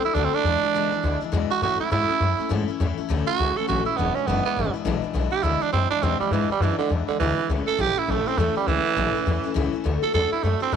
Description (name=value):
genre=rock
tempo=204 BPM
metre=4/4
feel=swing 60% on 8ths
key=A major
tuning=A4 = 441 Hz
part: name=growling tenor saxophone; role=melody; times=0.0-10.8 s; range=D3 to A4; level=-24 LUFS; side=right 8 dB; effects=none
part: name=picked steel-string acoustic guitar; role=accompaniment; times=0.0-10.8 s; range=E2 to F#4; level=-28 LUFS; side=left 12 dB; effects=none
part: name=upright bass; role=bass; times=0.0-10.8 s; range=E1 to A2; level=-25 LUFS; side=left 2 dB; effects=none
room=light reverb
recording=1960s-style stereo with parts hard left and right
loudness=-21 LUFS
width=side -7 dB against mid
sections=0.0-2.8 A section; 2.8-10.8 B section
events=none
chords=0.5 E7; 1.6 A; 4.0 E7; 7.5 A; 9.9 D